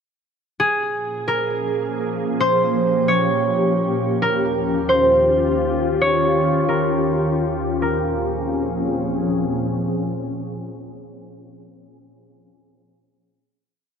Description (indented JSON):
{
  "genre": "hip hop, atmospheric cloud-rap",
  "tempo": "133 BPM",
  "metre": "4/4",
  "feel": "half-time",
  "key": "Bb dorian",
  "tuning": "A4 = 440 Hz",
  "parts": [
    { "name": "concert harp", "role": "melody", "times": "0.6-9.9 s", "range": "Ab4 to Db5", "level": "-20 LUFS", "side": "right 1 dB", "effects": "tape echo" },
    { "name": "glassy FM pad", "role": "sustained chords", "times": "1.1-10.8 s", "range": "Eb2 to Ab4", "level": "-21 LUFS", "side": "left 1 dB", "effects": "ensemble chorus, built-in reverb" }
  ],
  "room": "moderate huge ambient reverb, RT60 4.7 s",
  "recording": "low-pass filter",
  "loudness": "-18 LUFS",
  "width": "side -6 dB against mid",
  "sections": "0.6-7.8 breakdown; 7.8-11.4 final chord",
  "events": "none",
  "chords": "0.6 Bbm7; 4.2 Eb7; 7.8 Bbm7"
}